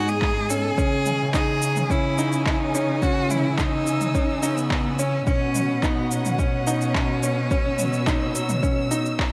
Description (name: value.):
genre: piano and strings electronica.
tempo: 107 BPM.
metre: 4/4.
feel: straight.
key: unclear.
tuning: A4 = 440 Hz.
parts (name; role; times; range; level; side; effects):
clear cello; melody; 0.0-9.2 s; B3 to A4; -29 LUFS; equal; none.
warm studio string section; sustained chords; 0.0-9.3 s; E3 to E6; -33 LUFS; equal; sidechain pumping.
clear baby grand piano; riff; 0.0-9.3 s; C#4 to D#4; -29 LUFS; equal; none.
dark chamber cello section; bass; 0.0-9.3 s; G#2 to C#3; -30 LUFS; equal; sidechain pumping.
organic electronic drum kit; drums; 0.1-9.3 s; handclaps, shaker, toms; -32 LUFS; equal; overdrive.
electronic kick drum; drums; 0.2-9.3 s; none; -27 LUFS; equal; overdrive.
room: light reverb, small room ambience.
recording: none.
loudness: -23 LUFS.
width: mono.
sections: 0.0-9.3 A section.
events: none.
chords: 0.0 G#m; 0.8 C#madd9; 5.3 Bsus2.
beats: 0.22 | 0.78 1.34 1.90 2.46 | 3.02 3.59 4.15 4.71 | 5.27 5.83 6.39 6.95 | 7.51 8.07 8.63 9.19.